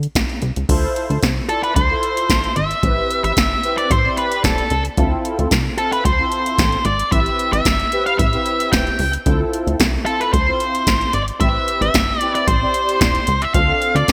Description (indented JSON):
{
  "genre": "early-eighties boogie funk",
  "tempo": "112 BPM",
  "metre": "4/4",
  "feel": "straight",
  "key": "D dorian",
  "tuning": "A4 = 438 Hz",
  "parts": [
    { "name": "plucky analog bass", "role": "bass", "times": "0.0-14.1 s", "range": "E1 to D2", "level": "-23 LUFS", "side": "equal", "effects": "none" },
    { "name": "electro analog drum machine", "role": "drums", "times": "0.0-14.1 s", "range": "crash cymbal, hi-hat, kick drum, snare drum", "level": "-22 LUFS", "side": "equal", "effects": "gated reverb" },
    { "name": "mellow synth brass", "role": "accompaniment", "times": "0.7-14.1 s", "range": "C4 to D5", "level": "-27 LUFS", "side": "equal", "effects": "chorus, phaser" },
    { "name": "octave-fuzz lead guitar", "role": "melody", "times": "1.5-14.1 s", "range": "A4 to G5", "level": "-21 LUFS", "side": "equal", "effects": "distortion, delay" }
  ],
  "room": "moderate lush hall reverb, RT60 2.0 s",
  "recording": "bright 1980s-style digital production",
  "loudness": "-18 LUFS",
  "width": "mono",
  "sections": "0.7-14.1 A section",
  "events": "none",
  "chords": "0.0 N.C.; 0.7 Dm7; 2.8 Am9; 5.0 Dm7; 7.1 Am9; 9.3 Dm7; 11.4 Am9; 13.5 Dm7"
}